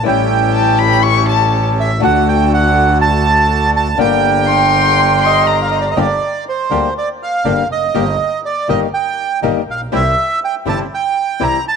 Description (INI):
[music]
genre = tango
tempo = 122 BPM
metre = 4/4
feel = rubato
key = G minor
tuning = A4 = 442 Hz
[part]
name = bandoneon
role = melody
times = 0.0-11.8 s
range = C5 to Bb5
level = -15 LUFS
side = right 5 dB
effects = none
[part]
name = flamenco guitar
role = accompaniment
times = 0.0-11.6 s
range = C3 to G4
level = -19 LUFS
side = left 12 dB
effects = none
[part]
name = bandoneon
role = stabs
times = 0.0-11.6 s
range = D3 to Bb4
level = -24 LUFS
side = right 10 dB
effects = none
[part]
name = rich double bass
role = bass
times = 0.0-11.6 s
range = F1 to D2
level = -18 LUFS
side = right 1 dB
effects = none
[part]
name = rich violin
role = second line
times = 0.5-6.0 s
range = A5 to C#6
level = -16 LUFS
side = left 11 dB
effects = none
[sound]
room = moderate plate reverb, RT60 2.7 s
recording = 1960s-style stereo with parts hard left and right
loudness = -12 LUFS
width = side -6 dB against mid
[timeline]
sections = 0.0-6.0 A section; 6.0-11.8 B section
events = none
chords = 0.0 A7; 2.0 D; 4.0 Gm; 7.9 Eb/G; 9.9 C